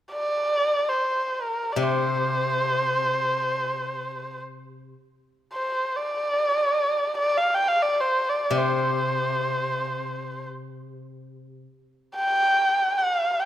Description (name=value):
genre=chinese traditional, Chinese chamber ensemble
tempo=free time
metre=none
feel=none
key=C shang mode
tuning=A4 = 440 Hz
part: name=dark erhu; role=melody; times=0.1-13.5 s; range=Bb4 to G5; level=-22 LUFS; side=equal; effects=none
part: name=steel-string zither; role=accompaniment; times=1.8-11.6 s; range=C3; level=-29 LUFS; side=left 3 dB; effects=none
room=moderate recital hall reverb, RT60 1.6 s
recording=minimal, uncompressed stereo recording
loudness=-22 LUFS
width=side -12 dB against mid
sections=0.0-13.5 A section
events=none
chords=none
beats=free time